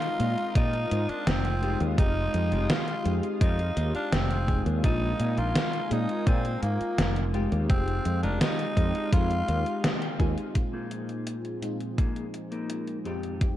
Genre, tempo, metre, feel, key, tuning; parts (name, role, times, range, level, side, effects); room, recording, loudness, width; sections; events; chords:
vaporwave; 84 BPM; 4/4; straight; F minor; A4 = 440 Hz
growling tenor saxophone; melody; 0.0-9.8 s; Bb3 to F4; -32 LUFS; equal; tape echo
FM electric piano with soft pad layer; accompaniment; 0.0-13.6 s; F2 to G4; -34 LUFS; left 1 dB; ensemble chorus, tape echo
lush unison pad; sustained chords; 0.0-13.6 s; F2 to Eb6; -40 LUFS; right 1 dB; chorus
clean electric guitar; riff; 0.0-13.5 s; Ab3 to Ab5; -37 LUFS; left 3 dB; wide subtle chorus, vintage 12-bit sampler grit, low-pass filter, tape echo
gated 80s digital drum machine; drums; 0.0-13.6 s; hi-hat, snare drum; -29 LUFS; equal; gated reverb, gated reverb snare, overdrive
woody fretless electric bass; bass; 0.2-10.3 s; F1 to Bb2; -27 LUFS; equal; lush chorus
electronic kick drum; drums; 0.6-13.6 s; -25 LUFS; equal; overdrive
light reverb; dark, warm production; -24 LUFS; side -13 dB against mid
0.0-10.6 A section; 10.6-13.6 B section
clean electric guitar fill 3.4-4.8, 9.5-10.6; band accent 9.8-10.2
0.0 Fm9; 4.8 Bb7sus4; 7.3 Fm9; 10.6 Bb7sus4; 13.1 Fm9